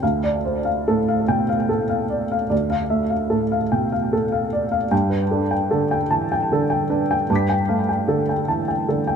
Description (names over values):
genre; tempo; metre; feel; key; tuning
neoclassical minimalist piano; 50 BPM (dotted quarters); 6/8; rubato; D dorian; A4 = 440 Hz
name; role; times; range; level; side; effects
dark upright piano; solo; 0.0-9.2 s; D2 to B6; -18 LUFS; equal; tape echo
room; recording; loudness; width
light reverb; close, detailed microphones; -18 LUFS; side -7 dB against mid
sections
0.0-9.2 A section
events
none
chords
0.0 Dmadd9; 4.9 Gadd9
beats
| 0.02 1.29 | 2.51 3.72 | 4.92 6.11 | 7.30 8.46